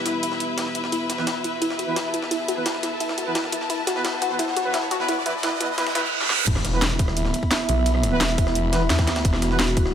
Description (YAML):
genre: dark technical drum and bass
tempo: 173 BPM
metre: 4/4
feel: straight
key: unclear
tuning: A4 = 439 Hz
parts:
  - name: dark analog pad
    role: sustained chords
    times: 0.0-9.9 s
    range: B3 to F#5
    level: -28 LUFS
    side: right 1 dB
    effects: chorus, sidechain pumping
  - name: riser, reverse cymbal and impact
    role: sound effects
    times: 0.2-7.9 s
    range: none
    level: -30 LUFS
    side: right 3 dB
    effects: none
  - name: rich studio string section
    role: texture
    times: 0.0-9.9 s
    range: E4 to B5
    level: -31 LUFS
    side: left 4 dB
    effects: sidechain pumping
  - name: warbly dusty pluck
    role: arpeggios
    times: 0.1-6.1 s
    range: E4 to E5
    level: -28 LUFS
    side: left 1 dB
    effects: chorus, sidechain pumping, dub echo
  - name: breakbeat sampler-style drum kit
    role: drums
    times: 0.1-9.9 s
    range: ride cymbal, snare drum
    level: -32 LUFS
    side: equal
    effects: high-pass filter on cymbals, high-pass filter on snare
  - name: drum and bass drum kit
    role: drums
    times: 0.1-9.9 s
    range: crash cymbal, hi-hat, rim click, snare drum, toms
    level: -26 LUFS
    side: equal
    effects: overdrive, high-pass filter on hats, high-pass filter on snare, high-pass filter on toms, high-pass filter on cymbals, high-pass filter on room
  - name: clear brass ensemble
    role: stabs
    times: 1.2-9.6 s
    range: E3 to B4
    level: -30 LUFS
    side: right 2 dB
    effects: dub echo
  - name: snarling distorted saw bass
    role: bass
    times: 6.5-9.9 s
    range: E1 to E2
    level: -23 LUFS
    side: equal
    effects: distortion, overdrive, sidechain pumping
  - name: electronic kick drum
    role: drums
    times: 6.5-9.8 s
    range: none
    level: -22 LUFS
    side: equal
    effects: overdrive
room: light reverb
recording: high-pass filter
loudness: -20 LUFS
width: side -9 dB against mid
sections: 0.0-6.5 A section; 6.5-9.9 B section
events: build-up 0.0-6.5; filter sweep on analog synth pad 0.0-6.5; filter sweep on synth arpeggio sound 0.0-6.5; riser 0.2-6.1; reverse cymbal 5.8-6.5; drum fill 6.2; drop 6.5-9.9; impact 6.5-7.9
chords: 0.0 E5